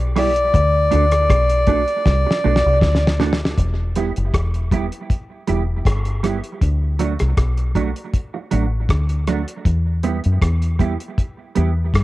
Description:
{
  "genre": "dub reggae",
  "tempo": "79 BPM",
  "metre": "4/4",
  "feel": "straight",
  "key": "E minor",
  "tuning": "A4 = 440 Hz",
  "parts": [
    { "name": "deep dub fingered electric bass", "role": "bass", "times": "0.0-12.0 s", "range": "E1 to G2", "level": "-18 LUFS", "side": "equal", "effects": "none" },
    { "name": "melodica", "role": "melody", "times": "0.2-2.8 s", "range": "D5", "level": "-18 LUFS", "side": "left 1 dB", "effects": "tape echo" },
    { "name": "mellow electric guitar", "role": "accompaniment", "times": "0.2-11.7 s", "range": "F#3 to A4", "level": "-25 LUFS", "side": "right 7 dB", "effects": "analog chorus, cassette tape, tape echo" },
    { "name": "cloth-damped thuddy drum kit", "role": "drums", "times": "0.2-12.0 s", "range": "hi-hat, kick drum, rim click, snare drum", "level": "-20 LUFS", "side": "equal", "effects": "cassette tape" }
  ],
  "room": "light reverb, studio reverb",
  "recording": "home recording on cassette",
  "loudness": "-16 LUFS",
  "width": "side -17 dB against mid",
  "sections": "0.0-3.6 A section; 3.6-12.0 B section",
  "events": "drum fill 2.1-3.6",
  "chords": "0.0 Em; 0.5 D; 3.6 Em; 6.6 D; 9.7 Em"
}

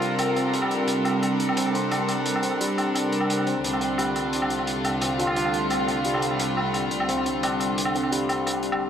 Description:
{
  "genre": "half-time drum and bass",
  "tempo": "174 BPM",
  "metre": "4/4",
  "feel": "half-time",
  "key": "unclear",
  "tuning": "A4 = 443 Hz",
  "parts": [
    { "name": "trumpet with plunger mute", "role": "melody", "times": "0.0-0.2, 5.2-5.7 s", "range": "F4", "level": "-33 LUFS", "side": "right 2 dB", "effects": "tape echo" },
    { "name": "rich chamber string section", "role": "sustained chords", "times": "0.0-8.9 s", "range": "C2 to Bb4", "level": "-25 LUFS", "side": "equal", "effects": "none" },
    { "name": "santur", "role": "arpeggios", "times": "0.0-8.9 s", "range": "G3 to D4", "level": "-28 LUFS", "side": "left 1 dB", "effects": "tape echo" },
    { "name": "hi-hat and woodblock", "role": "drums", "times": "0.0-8.8 s", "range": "none", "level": "-28 LUFS", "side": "equal", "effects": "none" }
  ],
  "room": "wet huge ambient reverb, RT60 7.7 s",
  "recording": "dreamy mix soaked in reverb",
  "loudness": "-22 LUFS",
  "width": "side -8 dB against mid",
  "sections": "0.0-8.9 A section",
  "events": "none",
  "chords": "0.0 Gm/C; 3.6 Dm/C"
}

